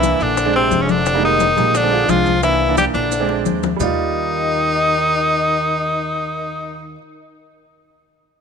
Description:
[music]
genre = Afro-Cuban jazz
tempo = 175 BPM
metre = 4/4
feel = straight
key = Eb major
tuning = A4 = 441 Hz
[part]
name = edgy tenor saxophone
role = melody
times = 0.0-7.0 s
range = C4 to G4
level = -18 LUFS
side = equal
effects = none
[part]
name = warm trombone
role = second line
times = 0.0-7.0 s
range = C3 to G3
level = -24 LUFS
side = left 12 dB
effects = tape echo
[part]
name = warm baby grand piano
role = accompaniment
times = 0.0-7.0 s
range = E3 to D5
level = -22 LUFS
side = right 14 dB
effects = none
[part]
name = upright bass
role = bass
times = 0.0-6.9 s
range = F1 to Eb2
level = -25 LUFS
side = equal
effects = none
[part]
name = bongos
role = percussion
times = 0.0-3.9 s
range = none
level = -28 LUFS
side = left 14 dB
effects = none
[part]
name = congas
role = percussion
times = 0.0-3.9 s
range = none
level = -23 LUFS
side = left 12 dB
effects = none
[part]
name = maracas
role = percussion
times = 0.0-3.9 s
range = none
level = -32 LUFS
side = right 16 dB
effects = none
[sound]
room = light reverb, studio reverb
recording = 1960s-style stereo with parts hard left and right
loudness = -15 LUFS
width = side -6 dB against mid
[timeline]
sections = 0.0-3.8 A section; 3.8-6.5 B section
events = drum fill 2.9-3.8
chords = 0.4 Bb9; 1.1 Fm11; 1.7 Bb9; 2.4 C7; 3.1 Bb9; 3.8 Ebmaj7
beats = 0.03 0.38 0.72 | 1.06 1.40 1.74 2.09 | 2.43 2.77 3.11 3.46 | 3.80 4.14 4.49 4.83 | 5.17 5.51 5.86 6.20

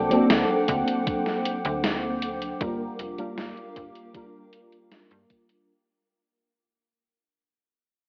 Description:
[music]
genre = vaporwave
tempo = 78 BPM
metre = 4/4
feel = straight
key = unclear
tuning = A4 = 440 Hz
[part]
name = mellow FM electric piano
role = accompaniment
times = 0.0-5.7 s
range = F#3 to Bb4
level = -28 LUFS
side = equal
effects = ensemble chorus, tape echo
[part]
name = warbly tape-like pad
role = sustained chords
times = 0.0-5.7 s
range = G4 to D6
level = -33 LUFS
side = equal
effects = chorus, built-in reverb
[part]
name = slap-like FM bass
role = bass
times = 0.0-5.3 s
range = F1 to G2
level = -37 LUFS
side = equal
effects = none
[part]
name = gated 80s digital drum machine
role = drums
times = 0.1-5.6 s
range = hi-hat, snare drum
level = -31 LUFS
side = equal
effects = gated reverb, gated reverb snare
[part]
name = electronic kick drum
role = drums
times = 0.7-5.5 s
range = none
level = -35 LUFS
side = equal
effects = none
[sound]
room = light reverb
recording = worn, warbling old tape, cassette tape, warbly pitch drift, AM radio sound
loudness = -26 LUFS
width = mono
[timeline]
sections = 0.0-5.7 A section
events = fade-out 0.0-5.7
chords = 0.0 D7b13; 2.6 Gm7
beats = 0.30 1.07 1.84 | 2.61 3.38 4.15 4.92

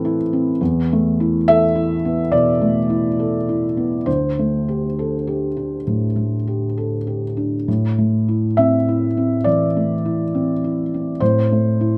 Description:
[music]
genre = neoclassical minimalist piano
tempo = 68 BPM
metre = 4/4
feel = rubato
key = A minor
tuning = A4 = 440 Hz
[part]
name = felt-muted upright piano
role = solo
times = 0.0-12.0 s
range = D2 to E5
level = -19 LUFS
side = equal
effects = none
[sound]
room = small room ambience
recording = rough home demo mix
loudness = -19 LUFS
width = mono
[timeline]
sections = 0.0-12.0 A section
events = none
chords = 0.0 Am; 0.6 E7sus4; 4.1 D7sus4; 7.7 Am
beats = | 0.60 1.47 2.32 3.18 | 4.07 4.97 5.87 6.77 | 7.67 8.57 9.46 10.34 | 11.20

